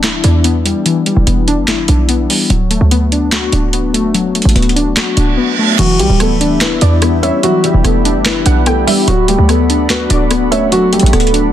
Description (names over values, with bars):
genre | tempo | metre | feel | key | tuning
hip hop, trap | 146 BPM | 4/4 | half-time | E minor | A4 = 440 Hz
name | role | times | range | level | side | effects
warbly lo-fi synth keys | accompaniment | 0.0-11.5 s | E3 to F#4 | -15 LUFS | left 4 dB | chorus, tremolo, low-pass filter
short 808-style bass | bass | 0.0-11.5 s | D1 to E2 | -13 LUFS | right 1 dB | none
booming analog drum machine | drums | 0.0-11.4 s | crash cymbal, handclaps, hi-hat, rim click, snare drum | -17 LUFS | right 1 dB | none
reverse cymbal | sound effects | 5.2-5.8 s | none | -18 LUFS | right 8 dB | none
dark concert grand piano | melody | 5.8-11.5 s | F#3 to C#5 | -16 LUFS | right 2 dB | low-pass filter
warbly tape-like pad | sustained chords | 5.8-11.5 s | G4 to B5 | -22 LUFS | right 2 dB | chorus, built-in reverb
warbly dusty pluck | second line | 6.8-10.7 s | D5 to G5 | -22 LUFS | right 4 dB | chorus, tape echo
room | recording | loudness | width
little or no reverb | dense, heavily limited modern master | -10 LUFS | side -11 dB against mid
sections
0.0-5.8 A section; 5.8-11.5 B section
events
reverse cymbal 5.2-5.8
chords
0.0 Em7; 2.5 D6; 5.8 Em7; 9.1 D6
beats
0.04 0.45 | 0.86 1.27 1.68 2.09 | 2.50 2.91 3.32 3.73 | 4.14 4.56 4.97 5.38 | 5.79 6.20 6.61 7.02 | 7.43 7.84 8.26 8.67 | 9.08 9.49 9.90 10.31 | 10.72 11.13